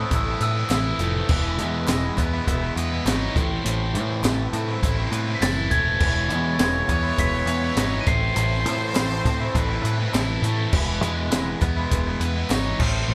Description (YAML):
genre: indie rock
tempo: 102 BPM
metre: 4/4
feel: straight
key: E major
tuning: A4 = 440 Hz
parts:
  - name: glockenspiel with rubber mallets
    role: melody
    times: 0.0-1.1, 5.3-9.2 s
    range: D#6 to D#7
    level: -30 LUFS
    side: equal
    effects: none
  - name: clear trumpet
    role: second line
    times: 0.0-13.1 s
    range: A4 to E5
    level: -36 LUFS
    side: equal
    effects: none
  - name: cranked stack guitar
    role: riff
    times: 0.0-13.1 s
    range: A2 to E4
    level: -32 LUFS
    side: equal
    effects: overdrive, phaser
  - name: cranked stack guitar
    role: riff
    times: 0.0-13.1 s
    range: A2 to B4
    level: -31 LUFS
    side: equal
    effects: overdrive
  - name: overdriven picked electric bass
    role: bass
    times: 0.0-13.1 s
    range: E1 to A2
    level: -28 LUFS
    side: equal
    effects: none
  - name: compact cocktail drum kit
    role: drums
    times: 0.1-12.9 s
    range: crash cymbal, hi-hat, kick drum, snare drum, tambourine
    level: -27 LUFS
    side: equal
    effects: none
  - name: group handclap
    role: percussion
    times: 0.7-12.6 s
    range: none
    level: -38 LUFS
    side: equal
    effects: none
  - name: ensemble organ-string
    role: sustained chords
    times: 6.0-13.1 s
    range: C4 to A5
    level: -42 LUFS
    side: equal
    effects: none
room: light reverb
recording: band playing live in one room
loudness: -23 LUFS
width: mono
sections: 0.0-13.1 A section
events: none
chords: 0.0 Amadd9; 1.3 Emaj7; 3.4 Amadd9; 6.0 Emaj7; 8.1 Amadd9; 10.7 Emaj7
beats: 0.11 0.70 | 1.29 1.88 2.47 3.06 | 3.65 4.24 4.83 5.42 | 6.01 6.60 7.19 7.78 | 8.38 8.97 9.56 10.15 | 10.74 11.33 11.92 12.51 | 13.10